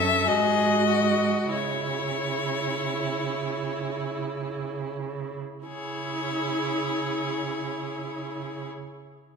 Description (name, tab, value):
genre	classical, slow romantic movement for string quartet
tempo	40-52 BPM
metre	3/4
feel	rubato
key	C# minor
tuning	A4 = 441 Hz
part	rich violin	melody	0.0-8.7 s	C#5 to E5	-28 LUFS	left 6 dB	none
part	clear violin	second line	0.0-8.7 s	E4 to A4	-34 LUFS	left 2 dB	none
part	rich viola	accompaniment	0.0-8.7 s	C#4 to F#4	-32 LUFS	right 2 dB	none
part	rich cello	bass	0.0-8.7 s	F#2 to C#3	-30 LUFS	right 6 dB	none
room	wet scoring stage reverb, RT60 1.9 s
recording	minimal, uncompressed stereo recording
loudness	-25 LUFS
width	side -5 dB against mid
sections	0.0-5.7 A section; 5.7-9.4 B section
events	slowing down 0.0-5.7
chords	0.3 G#5; 1.5 C#m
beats	0.26 | 1.51 2.83 4.21 | 5.67 7.10 8.54